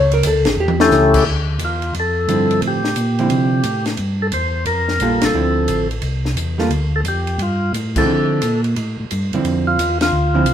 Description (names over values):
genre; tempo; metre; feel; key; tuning
soul jazz organ trio; 176 BPM; 4/4; swing 65% on 8ths; D minor; A4 = 440 Hz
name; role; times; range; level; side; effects
vintage hollow-body jazz guitar; accompaniment; 0.0-10.5 s; D3 to C#5; -19 LUFS; right 2 dB; none
mellow tonewheel organ; bass; 0.0-10.5 s; A1 to D3; -20 LUFS; equal; overdrive, chorus vibrato, slow rotary speaker
compact cocktail drum kit; drums; 0.1-10.5 s; crash cymbal, hi-hat, kick drum, ride cymbal, snare drum, toms; -24 LUFS; left 1 dB; none
percussive tonewheel organ; melody; 0.8-10.5 s; A3 to C5; -18 LUFS; left 2 dB; slow rotary speaker
room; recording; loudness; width
wet stone room reverb, RT60 1.1 s; band playing live in one room; -15 LUFS; side -9 dB against mid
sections
0.0-1.3 A section; 1.3-10.5 B section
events
hollow-body jazz guitar solo 0.0-1.3; drum fill 0.6-0.9; band accent 5.2, 7.9, 10.0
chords
0.0 A7; 1.3 Dm9; 4.0 Gm9; 5.3 Dm9; 6.7 Gsus2; 8.1 Dm9